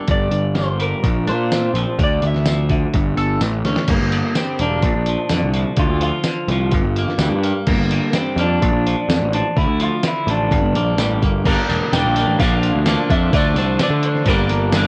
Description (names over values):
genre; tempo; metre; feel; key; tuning
indie rock; 127 BPM; 4/4; straight; unclear; A4 = 440 Hz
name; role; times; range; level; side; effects
biting overdriven guitar; riff; 0.0-14.9 s; G2 to A4; -26 LUFS; equal; cassette tape
electric guitar through a small old amp; melody; 0.1-14.9 s; Bb3 to G5; -25 LUFS; equal; cassette tape, analog delay
fuzz picked electric bass; bass; 0.1-14.9 s; E1 to D3; -21 LUFS; equal; overdrive
lo-fi sampler-style drum kit; drums; 0.1-14.8 s; crash cymbal, hi-hat, kick drum, snare drum, tambourine; -24 LUFS; equal; cassette tape
room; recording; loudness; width
little or no reverb; home recording on cassette; -18 LUFS; mono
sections
0.0-3.9 A section; 3.9-11.5 B section; 11.5-14.9 C section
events
drum fill 3.7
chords
0.1 Gm; 1.0 Bbadd9; 2.0 Dmadd9; 2.9 Gsus2; 3.4 A; 3.9 Gm; 4.8 Bbadd9; 5.8 Dm; 6.7 Gm; 8.6 Bb; 9.6 Dm; 10.5 Gmadd9; 11.5 Gm; 12.4 Bb; 13.3 Dm; 14.3 Gm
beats
| 0.09 0.56 1.04 1.51 | 1.99 2.46 2.94 3.41 | 3.89 4.36 4.84 5.31 | 5.79 6.26 6.74 7.21 | 7.68 8.15 8.63 9.10 | 9.57 10.04 10.52 10.99 | 11.46 11.93 12.40 12.87 | 13.34 13.81 14.28 14.74